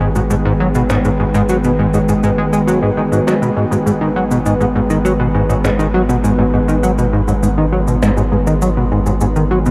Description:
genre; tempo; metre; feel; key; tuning
ambient, sequencer-driven space music; 101 BPM; 4/4; straight; G# minor; A4 = 440 Hz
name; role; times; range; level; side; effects
evolving wavetable pad; sustained chords; 0.0-9.7 s; D#3 to B4; -20 LUFS; equal; chorus, built-in reverb
plucky analog bass; riff; 0.0-9.7 s; G#2 to G#3; -18 LUFS; equal; lush chorus, cassette tape, tape echo
warm sub bass; bass; 0.0-9.7 s; G#1; -23 LUFS; equal; none
cabasa and percussion blips; percussion; 0.2-9.7 s; none; -29 LUFS; equal; tape echo
room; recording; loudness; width
moderate huge ambient reverb, RT60 8.4 s; dark, warm production; -15 LUFS; mono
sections
0.0-9.7 A section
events
none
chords
0.0 G#m

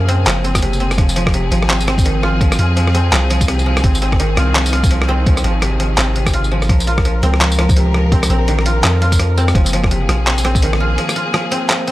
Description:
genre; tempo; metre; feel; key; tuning
half-time drum and bass; 168 BPM; 4/4; swing 60% on 16ths, half-time; F phrygian; A4 = 440 Hz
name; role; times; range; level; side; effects
clear studio string section; sustained chords; 0.0-11.9 s; Eb3 to Bb4; -23 LUFS; left 1 dB; sidechain pumping
koto; arpeggios; 0.0-11.9 s; C3 to F4; -20 LUFS; equal; tape echo
long sustained 808-style bass; bass; 0.0-11.0 s; F1 to Gb2; -16 LUFS; equal; none
boom bap sampler-style drum kit; drums; 0.1-11.9 s; handclaps, hi-hat, rim click, tambourine; -19 LUFS; equal; none
electronic kick drum; drums; 0.6-10.6 s; none; -14 LUFS; equal; none
room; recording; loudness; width
little or no reverb; dry, gritty hardware recording, cassette tape, lossy compression artefacts; -12 LUFS; side -16 dB against mid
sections
0.0-11.9 A section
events
break 11.0-11.9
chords
0.0 Gbadd9; 1.0 Fm; 3.8 Ab; 6.7 Bbm; 9.6 Gbadd9

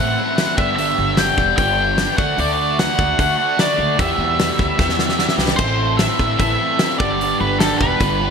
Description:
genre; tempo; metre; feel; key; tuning
indie rock; 150 BPM; 4/4; straight; A dorian; A4 = 441 Hz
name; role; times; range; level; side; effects
octave-fuzz lead guitar; melody; 0.0-8.3 s; A4 to G5; -19 LUFS; equal; distortion, ping-pong delay
crunchy overdriven guitar; riff; 0.0-8.3 s; E2 to A4; -20 LUFS; equal; lush chorus
upright bass; bass; 0.0-8.3 s; E1 to E2; -24 LUFS; equal; none
loose indie drum kit; drums; 0.4-8.1 s; crash cymbal, hi-hat, kick drum, snare drum; -20 LUFS; equal; gated reverb
room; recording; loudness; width
moderate lush hall reverb, RT60 2.1 s; bright 1980s-style digital production; -15 LUFS; side -6 dB against mid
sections
0.0-5.6 A section; 5.6-8.3 A section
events
drum fill 4.8-5.6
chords
0.0 Am; 0.6 G6; 2.2 D; 4.0 Em; 5.6 Am; 7.0 G

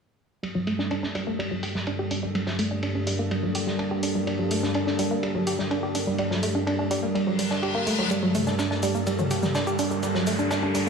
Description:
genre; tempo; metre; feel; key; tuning
melodic techno; 125 BPM; 4/4; straight; G minor; A4 = 437 Hz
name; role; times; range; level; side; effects
lush unison pad; sustained chords; 0.4-10.9 s; G2 to A4; -28 LUFS; right 2 dB; chorus
woody wave-folded pluck; arpeggios; 0.4-10.9 s; F#3 to G4; -27 LUFS; right 1 dB; chorus, digital delay
analog drone; drone; 1.2-10.9 s; G2 to D3; -33 LUFS; left 1 dB; chorus
loose indie drum kit; drums; 0.4-10.9 s; ride cymbal, snare drum; -36 LUFS; equal; high-pass filter on cymbals, low-pass filter on cymbals, high-pass filter on snare, low-pass filter on snare, high-pass filter on room, low-pass filter on room
punchy analog drum machine; drums; 0.7-10.9 s; hi-hat, shaker, toms; -33 LUFS; left 1 dB; low-pass filter on hats, low-pass filter on perc, low-pass filter on toms
reverse cymbal and riser; sound effects; 7.3-10.9 s; none; -32 LUFS; left 2 dB; none
room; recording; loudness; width
moderate lush hall reverb, RT60 1.8 s; studio reverb; -23 LUFS; side -5 dB against mid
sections
0.4-8.1 A section; 8.1-10.9 B section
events
filter sweep on synth pluck 0.4-8.1; filter sweep on analog synth pad 0.4-8.1; reverse cymbal 7.3-8.1; build-up 8.1-10.9; riser 8.1-10.9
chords
0.4 Gmadd9

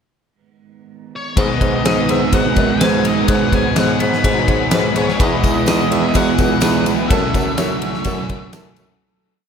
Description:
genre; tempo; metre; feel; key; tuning
rock, shoegaze and dream pop; 126 BPM; 4/4; straight; unclear; A4 = 444 Hz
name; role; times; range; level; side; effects
octave-fuzz lead guitar; melody; 1.2-8.5 s; C#5 to B5; -23 LUFS; left 3 dB; distortion, diffuse ambient delay
brassy analog pad; sustained chords; 1.4-9.0 s; E3 to G#5; -26 LUFS; equal; chorus
clean electric guitar; arpeggios; 1.4-9.5 s; F#4 to D#5; -26 LUFS; right 1 dB; lush chorus, diffuse ambient delay
crunchy overdriven guitar; riff; 1.4-9.0 s; F#2 to E4; -21 LUFS; right 9 dB; reverse reverb
overdriven semi-hollow guitar; riff; 1.4-9.0 s; F#2 to E4; -22 LUFS; left 8 dB; analog chorus
warm bassoon; bass; 1.4-8.9 s; C#2 to G#2; -22 LUFS; left 1 dB; none
huge arena drum kit; drums; 1.4-8.9 s; kick drum, ride cymbal, snare drum; -19 LUFS; equal; none
tambourine; percussion; 5.2-8.9 s; none; -36 LUFS; right 9 dB; none
room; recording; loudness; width
moderate huge ambient reverb, RT60 4.2 s; dreamy mix soaked in reverb; -14 LUFS; side -7 dB against mid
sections
0.0-1.4 pickup bar; 1.4-9.0 verse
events
fade-out 7.1-9.0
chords
0.0 N.C.; 1.4 G#m7; 5.2 Emaj9; 7.1 F#m7

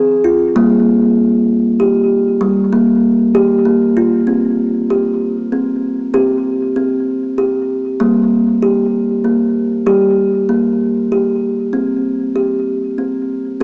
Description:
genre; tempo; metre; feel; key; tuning
world meditative, meditative tuned percussion; 64 BPM (dotted quarters); 6/8; straight; unclear; A4 = 440 Hz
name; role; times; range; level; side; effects
kalimba; solo; 0.0-13.6 s; F3 to G4; -11 LUFS; equal; cassette tape, tape echo
room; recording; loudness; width
moderate lush hall reverb, RT60 2.2 s; home recording on cassette, small speaker sound; -11 LUFS; side -33 dB against mid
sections
0.0-4.3 A section; 4.3-13.6 B section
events
none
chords
0.0 F5; 0.6 Gm; 4.3 C5; 8.0 Gm; 11.7 C5

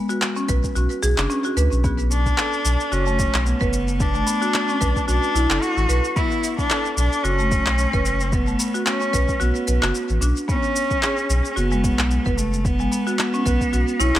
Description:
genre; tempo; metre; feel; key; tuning
organic downtempo; 111 BPM; 4/4; swing 56% on 16ths; B dorian; A4 = 436 Hz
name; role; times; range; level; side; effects
marimba with medium hard mallets; arpeggios; 0.0-14.2 s; G#3 to B4; -25 LUFS; equal; tape echo
electronic shaker and handclaps; drums; 0.1-14.2 s; none; -26 LUFS; equal; tape echo
warm sub bass; bass; 0.5-14.2 s; F#1 to D2; -21 LUFS; equal; sidechain pumping
electronic kick drum; drums; 0.5-13.7 s; none; -25 LUFS; equal; overdrive
rich cello; melody; 2.1-14.2 s; A3 to F#4; -23 LUFS; equal; tape echo
room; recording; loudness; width
light reverb, studio reverb; echo-heavy mix; -18 LUFS; side -13 dB against mid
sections
0.0-14.2 A section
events
none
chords
0.0 N.C.; 1.8 Bm; 10.5 N.C.

